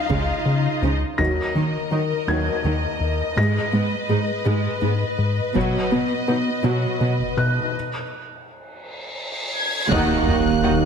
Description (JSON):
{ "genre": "cinematic, hybrid orchestral and electronic film score", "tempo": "55 BPM (dotted quarters)", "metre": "6/8", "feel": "straight", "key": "Eb minor", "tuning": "A4 = 440 Hz", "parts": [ { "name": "warm symphonic violin section", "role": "melody", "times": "0.0-0.8, 9.6-10.9 s", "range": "F5 to Ab6", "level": "-26 LUFS", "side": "left 3 dB", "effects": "none" }, { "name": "rich symphonic violin section", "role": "second line", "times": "0.0-10.7 s", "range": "F4 to D#5", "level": "-27 LUFS", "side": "left 2 dB", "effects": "none" }, { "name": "rich symphonic viola section", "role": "accompaniment", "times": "0.0-10.7 s", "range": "Eb3 to D#4", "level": "-27 LUFS", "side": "right 2 dB", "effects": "none" }, { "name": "felt-muted upright piano", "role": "texture", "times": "0.0-7.8 s", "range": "F6 to Bb6", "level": "-29 LUFS", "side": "left 1 dB", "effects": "digital delay" }, { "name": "fat analog bass", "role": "riff", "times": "0.1-10.9 s", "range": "Db2 to B3", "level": "-23 LUFS", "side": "left 2 dB", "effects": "none" }, { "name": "rich symphonic cello section", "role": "bass", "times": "0.1-10.9 s", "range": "Eb2 to Eb3", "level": "-26 LUFS", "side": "right 4 dB", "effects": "none" }, { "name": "taiko ensemble", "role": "drums", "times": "0.1-10.6 s", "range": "none", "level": "-30 LUFS", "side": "right 1 dB", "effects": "none" }, { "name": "cymbal swell and sub drop", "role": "sound effects", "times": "8.6-10.9 s", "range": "none", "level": "-29 LUFS", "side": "equal", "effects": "none" }, { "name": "bright trombone section", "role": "sustained chords", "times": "9.9-10.9 s", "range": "Eb3 to Bb3", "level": "-25 LUFS", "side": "right 4 dB", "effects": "none" }, { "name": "mellow tuba", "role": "bass", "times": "9.9-10.9 s", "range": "Eb2", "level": "-23 LUFS", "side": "right 6 dB", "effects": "none" }, { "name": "saturated sub bass", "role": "bass", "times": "9.9-10.9 s", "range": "Eb1", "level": "-30 LUFS", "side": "equal", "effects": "none" }, { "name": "warm symphonic double bass section", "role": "bass", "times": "9.9-10.9 s", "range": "Eb2", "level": "-30 LUFS", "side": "right 3 dB", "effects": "none" } ], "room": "wet scoring stage reverb, RT60 1.5 s", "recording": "heavily compressed radio sound", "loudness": "-19 LUFS", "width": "side -7 dB against mid", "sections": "0.0-1.2 A section; 1.2-9.9 B section", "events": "break 7.7-9.9; cymbal swell 8.6-9.9; band accent 9.9-10.6; impact 9.9-10.9", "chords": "0.0 Dbadd9; 1.2 Ebm; 3.4 Abm; 5.6 B; 7.7 N.C.; 9.9 Ebm" }